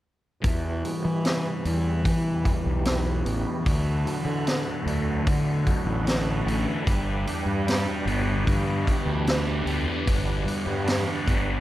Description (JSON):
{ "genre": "psychedelic rock", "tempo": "75 BPM", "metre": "4/4", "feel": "straight", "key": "E minor", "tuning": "A4 = 440 Hz", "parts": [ { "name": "tonewheel organ", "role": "sustained chords", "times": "0.4-11.6 s", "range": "D4 to G5", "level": "-36 LUFS", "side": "right 5 dB", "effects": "slow rotary speaker, overdrive, chorus vibrato, low-pass filter" }, { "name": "thick fuzz guitar", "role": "riff", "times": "0.4-11.6 s", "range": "G2 to E4", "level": "-28 LUFS", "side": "left 1 dB", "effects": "distortion, phaser, low-pass filter" }, { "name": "fuzz fingered electric bass", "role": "bass", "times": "0.4-11.6 s", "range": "G1 to E3", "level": "-27 LUFS", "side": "equal", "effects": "overdrive" }, { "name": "tanpura", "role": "drone", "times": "0.4-11.6 s", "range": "E2 to E3", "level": "-34 LUFS", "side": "equal", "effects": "none" }, { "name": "vintage drum kit", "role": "drums", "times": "0.4-11.5 s", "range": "hi-hat, kick drum, snare drum", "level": "-27 LUFS", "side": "equal", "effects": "none" } ], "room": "small room ambience", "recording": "none", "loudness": "-23 LUFS", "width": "side -14 dB against mid", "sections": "0.4-11.6 A section", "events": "filter sweep 0.4-11.6", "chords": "0.4 Em; 3.7 D; 6.9 G", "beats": "| 0.43 1.24 2.04 2.85 | 3.65 4.45 5.26 6.06 | 6.86 7.66 8.47 9.27 | 10.07 10.87" }